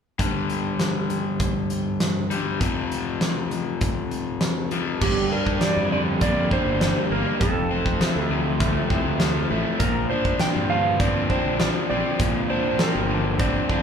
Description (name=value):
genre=classic rock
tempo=100 BPM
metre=4/4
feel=straight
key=G minor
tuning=A4 = 440 Hz
part: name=overdriven electric guitar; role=riff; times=0.2-13.8 s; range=F2 to D4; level=-25 LUFS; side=left 4 dB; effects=none
part: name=big rock drum kit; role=drums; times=0.2-13.8 s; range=crash cymbal, hi-hat, kick drum, snare drum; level=-25 LUFS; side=equal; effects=none
part: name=clean lap steel guitar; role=melody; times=5.0-13.8 s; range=G4 to G5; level=-27 LUFS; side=right 4 dB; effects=none
part: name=raw garage guitar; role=riff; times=5.0-13.8 s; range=F2 to C4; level=-29 LUFS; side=right 7 dB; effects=overdrive
part: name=fuzz fingered electric bass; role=bass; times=5.0-13.8 s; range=F1 to Bb2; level=-28 LUFS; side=right 1 dB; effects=overdrive
room=moderate large studio reverb, RT60 1.1 s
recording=band playing live in one room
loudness=-20 LUFS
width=side -7 dB against mid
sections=0.2-5.0 A section; 5.0-13.8 B section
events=none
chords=0.2 G5; 2.6 F5; 5.0 Gm; 7.4 F; 9.8 Bbadd9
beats=| 0.20 0.80 1.41 2.01 | 2.61 3.21 3.82 4.42 | 5.02 5.62 6.22 6.82 | 7.42 8.01 8.61 9.21 | 9.81 10.41 11.01 11.60 | 12.20 12.80 13.40